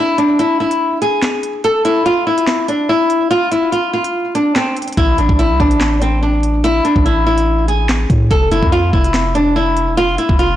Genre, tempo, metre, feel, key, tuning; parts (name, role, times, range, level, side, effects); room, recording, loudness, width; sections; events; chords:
hip hop, drill; 144 BPM; 4/4; half-time; A harmonic minor; A4 = 440 Hz
flamenco guitar; melody; 0.0-10.6 s; C4 to A4; -14 LUFS; left 1 dB; digital delay
drill drum kit; drums; 0.2-10.5 s; handclaps, hi-hat, kick drum, snare drum; -17 LUFS; equal
long sustained 808-style bass; bass; 5.0-10.6 s; E1 to A2; -17 LUFS; equal
moderate recital hall reverb, RT60 1.5 s, digital ambience; blown-out, overdriven recording, vinyl crackle, overdrive; -12 LUFS; side -12 dB against mid
0.0-10.6 A section
break 0.0-5.0
0.0 N.C.; 5.0 A5; 8.3 Dmadd9 (rootless)